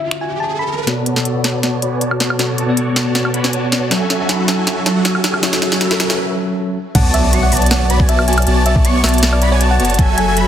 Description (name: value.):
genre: future bass.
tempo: 158 BPM.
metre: 4/4.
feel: half-time.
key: B dorian.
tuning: A4 = 440 Hz.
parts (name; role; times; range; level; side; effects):
thumb-piano-like synth pluck; melody; 0.0-0.8, 6.9-10.3 s; C#5 to B5; -21 LUFS; left 1 dB; chorus, sidechain pumping, ping-pong delay.
bell-like tine electric piano; accompaniment; 0.0-6.8 s; B2 to E5; -21 LUFS; left 1 dB; fast stereo tremolo, sidechain pumping, ping-pong delay.
riser and impact; sound effects; 0.0-8.5 s; none; -25 LUFS; equal; none.
trap drum kit; drums; 0.1-10.4 s; crash cymbal, finger snaps, hi-hat, snare drum, woodblock; -18 LUFS; equal; high-pass filter on snare, high-pass filter on hats, high-pass filter on perc, high-pass filter on cymbals.
supersaw chords; riff; 0.9-10.5 s; F#3 to C#6; -18 LUFS; right 1 dB; phaser, cassette tape, sidechain pumping, low-pass filter.
airy dreamy lead; arpeggios; 6.9-10.5 s; G#5 to C#6; -23 LUFS; left 1 dB; chorus, sidechain pumping, ping-pong delay.
saturated sub bass; bass; 7.0-10.5 s; F#1 to B1; -15 LUFS; equal; sidechain pumping.
electronic kick drum; drums; 7.0-10.1 s; none; -14 LUFS; equal; none.
room: moderate lush hall reverb, RT60 1.7 s, digital ambience.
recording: heavily compressed radio sound, multiband compression.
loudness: -13 LUFS.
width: side -10 dB against mid.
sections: 0.9-6.9 A section; 6.9-10.5 B section.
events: riser 0.0-0.9, 0.9-6.2; build-up 0.9-6.9; drum fill 0.9-6.2; filter sweep on supersaw synth 0.9-6.9; break 6.2-6.9; drop 6.9-10.5; impact 6.9-8.5.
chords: 0.0 Dmaj9; 0.9 Bm7; 3.9 F#m7; 6.8 N.C.; 6.9 Bm7.